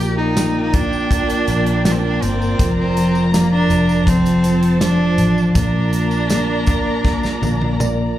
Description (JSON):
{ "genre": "pop ballad", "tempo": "81 BPM", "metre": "4/4", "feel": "straight", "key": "Bb major", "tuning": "A4 = 439 Hz", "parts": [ { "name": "warm cello", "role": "melody", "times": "0.0-7.8 s", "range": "Bb3 to G4", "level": "-22 LUFS", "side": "right 2 dB", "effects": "slapback echo" }, { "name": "mellow tine electric piano", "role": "accompaniment", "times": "0.0-8.2 s", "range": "F3 to D5", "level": "-18 LUFS", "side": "equal", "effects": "medium stereo tremolo, slapback echo" }, { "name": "dark studio string section", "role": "sustained chords", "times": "0.0-8.2 s", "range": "F4 to Bb5", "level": "-25 LUFS", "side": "equal", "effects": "plate reverb" }, { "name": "vintage muted fingered electric bass", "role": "bass", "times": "0.0-8.1 s", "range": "F1 to Bb1", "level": "-21 LUFS", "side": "equal", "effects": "none" }, { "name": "tambourine", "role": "percussion", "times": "0.0-8.0 s", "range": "none", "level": "-35 LUFS", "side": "right 2 dB", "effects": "none" }, { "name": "modern studio drum kit", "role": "drums", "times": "0.4-8.0 s", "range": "hi-hat, kick drum, snare drum, toms", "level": "-20 LUFS", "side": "equal", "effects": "none" } ], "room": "light reverb", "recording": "live gig heard through the venue's PA, club reverb", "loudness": "-14 LUFS", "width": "side -13 dB against mid", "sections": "0.0-8.2 A section", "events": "drum fill 7.0-8.2; tine electric piano fill 7.4-8.2", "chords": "0.0 Bb6; 2.6 Bb/F; 4.1 F; 5.6 Bb" }